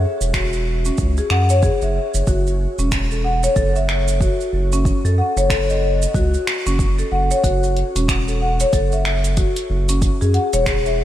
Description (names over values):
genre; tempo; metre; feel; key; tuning
organic downtempo; 93 BPM; 4/4; swing 60% on 16ths; F# minor; A4 = 438 Hz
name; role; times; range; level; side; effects
round analog bass; bass; 0.0-11.0 s; E1 to F#2; -19 LUFS; equal; none
deep house drum kit; drums; 0.2-11.0 s; finger snaps, hi-hat, shaker; -26 LUFS; right 2 dB; none
marimba with medium hard mallets; arpeggios; 0.3-11.0 s; C#4 to F#5; -20 LUFS; left 2 dB; low-pass filter, tape echo, shimmer reverb
electronic kick drum; drums; 0.3-10.8 s; none; -21 LUFS; equal; none
room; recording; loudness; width
moderate lush hall reverb, RT60 2.7 s; big arena sound; -16 LUFS; side -12 dB against mid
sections
0.0-11.0 A section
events
none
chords
0.0 N.C.; 4.9 F#m; 7.4 F#7(no3); 10.0 E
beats
0.34 0.99 1.63 | 2.28 2.92 3.57 4.21 | 4.86 5.50 6.15 6.79 | 7.44 8.08 8.73 9.37 | 10.02 10.66